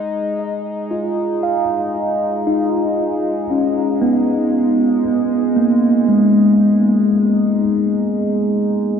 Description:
ambient; 58 BPM; 4/4; straight; G# dorian; A4 = 438 Hz
mellow tine electric piano; arpeggios; 0.0-9.0 s; G#3 to E#5; -15 LUFS; equal; wide subtle chorus, diffuse ambient delay
analog drone; drone; 0.0-9.0 s; G#3 to D#4; -23 LUFS; left 1 dB; chorus
wet cathedral reverb, RT60 6.4 s; in a vast, echoing space; -14 LUFS; side -7 dB against mid
0.0-9.0 A section
0.0 G#m
0.38 | 1.42 2.46 3.50 4.53 | 5.56 6.60 7.64 8.69

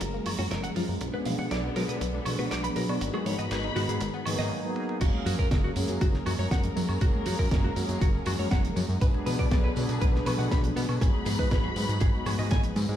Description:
nu-disco, nu disco; 120 BPM; 4/4; straight; F# major; A4 = 440 Hz
mellow synth brass; accompaniment; 0.0-13.0 s; F#3 to E#5; -34 LUFS; equal; chorus, sidechain pumping, ping-pong delay
muted studio string section; sustained chords; 0.0-13.0 s; D3 to B5; -37 LUFS; left 1 dB; sidechain pumping
analog pluck; arpeggios; 0.0-4.4 s; D#3 to F#4; -36 LUFS; left 3 dB; chorus, phaser, sidechain pumping, ping-pong delay
fat analog bass; bass; 0.0-13.0 s; F#1 to B2; -30 LUFS; equal
damped 70s drum kit; drums; 0.0-13.0 s; crash cymbal, hi-hat, snare drum, tambourine, toms, woodblock; -35 LUFS; right 2 dB; high-pass filter on hats, studio reverb, high-pass filter on toms, high-pass filter on cymbals, high-pass filter on snare, high-pass filter on perc, high-pass filter on room
electronic kick drum; drums; 0.0-12.6 s; -26 LUFS; equal; high-pass filter on kick, studio reverb, high-pass filter on room
congas and tambourine; percussion; 0.0-13.0 s; -39 LUFS; left 4 dB
clean electric guitar; riff; 0.4-12.8 s; F#3 to B5; -35 LUFS; equal; wide subtle chorus, ping-pong delay
light reverb, studio ambience; played on a big sound system in a bare room, stone room reverb; -25 LUFS; side -11 dB against mid
0.0-5.0 A section; 5.0-13.0 B section
build-up 0.0-5.0; filter sweep on synth arpeggio sound 0.0-5.0; drum fill 4.8; drop 5.0-13.0
0.0 F#maj9; 1.0 Bm6; 3.0 G#m7; 5.0 F#maj9; 9.0 Bm6; 11.0 G#m7
0.01 0.51 | 1.01 1.51 2.01 2.51 | 3.01 3.51 4.01 4.51 | 5.01 5.51 6.01 6.51 | 7.01 7.51 8.01 8.51 | 9.01 9.51 10.01 10.51 | 11.01 11.51 12.01 12.51

